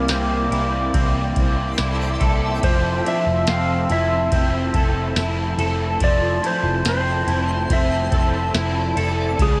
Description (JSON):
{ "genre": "dream pop", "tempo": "71 BPM", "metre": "4/4", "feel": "straight", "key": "F major", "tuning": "A4 = 440 Hz", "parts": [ { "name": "clean lap steel guitar", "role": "melody", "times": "0.0-9.6 s", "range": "Ab4 to F5", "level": "-28 LUFS", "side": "equal", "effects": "digital delay" }, { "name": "crunchy overdriven guitar", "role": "accompaniment", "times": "0.0-9.6 s", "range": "C3 to A4", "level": "-31 LUFS", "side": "equal", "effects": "harmonic tremolo, ensemble chorus" }, { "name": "warbly tape-like pad", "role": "sustained chords", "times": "0.0-9.6 s", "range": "Bb3 to E6", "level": "-30 LUFS", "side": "equal", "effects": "chorus, built-in reverb" }, { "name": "electric guitar at the edge of break-up", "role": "arpeggios", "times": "0.0-9.6 s", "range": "C3 to A4", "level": "-27 LUFS", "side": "equal", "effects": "ensemble chorus, digital delay" }, { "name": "vintage muted picked electric bass", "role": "bass", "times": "0.0-9.6 s", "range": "F1 to Db2", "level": "-26 LUFS", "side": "equal", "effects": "none" }, { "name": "booming analog drum machine", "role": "drums", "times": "0.1-9.6 s", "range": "kick drum, ride cymbal, snare drum, tambourine", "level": "-25 LUFS", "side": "equal", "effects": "none" }, { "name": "twinkling granular texture", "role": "texture", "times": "1.7-9.6 s", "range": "C5 to D6", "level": "-37 LUFS", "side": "equal", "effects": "built-in reverb, digital delay" } ], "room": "light reverb", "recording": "none", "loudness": "-20 LUFS", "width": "mono", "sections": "0.0-9.6 A section", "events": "none", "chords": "0.0 C13; 2.6 Fmaj7", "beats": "0.09 0.94 1.78 | 2.63 3.48 4.32 5.17 | 6.01 6.86 7.70 8.54 | 9.39" }